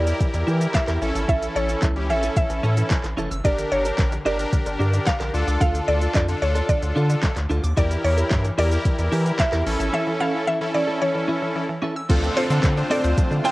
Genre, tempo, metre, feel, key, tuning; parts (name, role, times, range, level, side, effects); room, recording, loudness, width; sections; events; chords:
dance-pop; 111 BPM; 4/4; straight; A4 = 440 Hz
mallet-like synth pluck; melody; 0.0-13.5 s; C5 to G5; -26 LUFS; equal; chorus, cassette tape, analog delay
big bright polysynth; accompaniment; 0.0-13.5 s; C4 to C5; -26 LUFS; equal; sidechain pumping, cassette tape
mallet-like synth pluck; arpeggios; 0.0-13.5 s; D3 to E6; -33 LUFS; left 1 dB; chorus, sidechain pumping, cassette tape, analog delay
direct-recorded clean electric guitar; riff; 0.0-13.5 s; C4 to Bb4; -29 LUFS; right 2 dB; analog chorus, cassette tape
round analog bass; bass; 0.0-13.4 s; F1 to E3; -23 LUFS; equal; sidechain pumping
smooth R&B drum kit; drums; 0.1-13.5 s; crash cymbal, handclaps, hi-hat, kick drum, shaker, snare drum; -23 LUFS; equal
granular cloud pad; sustained chords; 13.0-13.5 s; D3 to F4; -34 LUFS; equal
downlifter; sound effects; 12.1-13.5 s; -34 LUFS; equal
light reverb, digital ambience; home recording on cassette; -19 LUFS; side -19 dB against mid
0.0-12.1 A section; 12.1-13.5 B section
break 9.9-12.1
0.0 Edim; 1.0 A; 3.4 Gm; 5.3 Dm; 7.8 Edim; 9.7 A; 12.1 Dm7